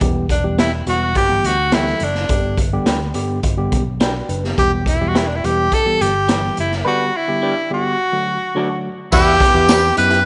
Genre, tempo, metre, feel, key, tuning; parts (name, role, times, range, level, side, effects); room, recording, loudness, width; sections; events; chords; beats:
uptempo 1960s-style soul; 105 BPM; 4/4; straight; E minor; A4 = 440 Hz
tine electric piano; accompaniment; 0.0-10.1 s; D3 to D5; -26 LUFS; equal
fingered electric bass; bass; 0.0-10.2 s; E1 to G2; -25 LUFS; equal
raw garage drum kit; drums; 0.0-10.2 s; crash cymbal, hi-hat, kick drum, snare drum; -22 LUFS; equal
edgy tenor saxophone; melody; 0.3-10.2 s; D4 to B4; -20 LUFS; equal; slapback echo
electric guitar through a small old amp; stabs; 0.6-10.2 s; B3 to D5; -29 LUFS; equal
warm horn section; second line; 6.8-9.9 s; B2 to B4; -24 LUFS; equal
tambourine; percussion; 9.1-9.8 s; -30 LUFS; equal
light reverb, small room ambience; nothing above 10.8 kHz; -17 LUFS; mono
0.0-9.1 A section; 9.1-10.3 B section
break 6.9-9.1; band accent 6.9-9.1
0.0 Em; 2.3 G; 4.6 Em; 6.9 G; 8.0 D; 9.1 Em
| 0.01 0.58 1.16 1.73 | 2.30 2.87 3.44 4.01 | 4.58 5.15 5.72 6.29 | 6.85 7.42 7.99 8.56 | 9.12 9.69